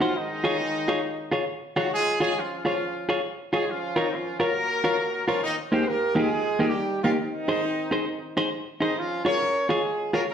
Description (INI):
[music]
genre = ska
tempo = 136 BPM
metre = 4/4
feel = swing 61% on 8ths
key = Db major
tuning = A4 = 443 Hz
[part]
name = warm horn section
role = melody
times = 0.0-10.3 s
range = Eb3 to Db5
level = -26 LUFS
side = equal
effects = none
[part]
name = clean electric guitar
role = accompaniment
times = 0.0-10.3 s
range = Bb3 to Db5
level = -25 LUFS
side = equal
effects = none
[sound]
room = wet large studio reverb, RT60 1.0 s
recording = band playing live in one room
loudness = -23 LUFS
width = side -8 dB against mid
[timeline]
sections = 0.0-10.3 A section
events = none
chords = 0.2 Db; 3.7 Bbm; 5.5 Eb; 7.2 Ab; 9.0 Db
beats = | 0.17 0.61 1.05 1.49 | 1.93 2.37 2.81 3.25 | 3.69 4.13 4.57 5.01 | 5.45 5.89 6.33 6.78 | 7.22 7.66 8.10 8.54 | 8.98 9.42 9.86 10.30